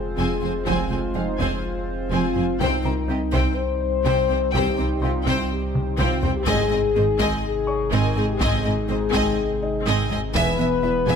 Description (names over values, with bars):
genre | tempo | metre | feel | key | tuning
cinematic, hybrid orchestral and electronic film score | 124 BPM | 4/4 | straight | F minor | A4 = 442 Hz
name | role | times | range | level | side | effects
chorused pulse-width pad | sustained chords | 0.0-11.2 s | C3 to C5 | -29 LUFS | equal | none
mellow French horn section | sustained chords | 0.0-11.2 s | Db4 to C5 | -25 LUFS | left 6 dB | none
pure sine sub bass | bass | 0.0-11.2 s | E1 to C2 | -29 LUFS | equal | none
impact | sound effects | 0.0-0.7 s | none | barely audible | none | none
felt-muted upright piano | texture | 0.0-11.2 s | Eb4 to Db6 | -37 LUFS | left 2 dB | ping-pong delay
warm symphonic violin section | melody | 0.2-11.2 s | Eb5 to Ab5 | -31 LUFS | left 1 dB | none
rich chamber violin section | second line | 0.2-11.2 s | G4 to E5 | -29 LUFS | left 2 dB | none
rich studio viola section | accompaniment | 0.2-11.2 s | B3 to C4 | -31 LUFS | right 1 dB | none
thumb-piano-like synth pluck | arpeggios | 0.2-11.2 s | C3 to Ab4 | -34 LUFS | right 1 dB | none
clear symphonic double bass section | bass | 0.2-11.2 s | E1 to C2 | -28 LUFS | right 4 dB | none
warm symphonic cello section | bass | 0.2-11.2 s | E2 to C3 | -29 LUFS | right 2 dB | none
taiko ensemble | drums | 0.7-11.2 s | none | -29 LUFS | equal | none
room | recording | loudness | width
light reverb | close, detailed microphones | -20 LUFS | side -7 dB against mid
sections
0.0-11.2 A section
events
impact 0.0-0.7; drum fill 5.7-6.5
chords
0.0 Fm; 2.6 Cm; 6.5 Ab; 10.3 E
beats
0.18 | 0.67 1.15 1.64 2.12 | 2.60 3.09 3.57 4.05 | 4.54 5.02 5.51 5.99 | 6.47 6.96 7.44 7.93 | 8.41 8.89 9.38 9.86 | 10.35 10.83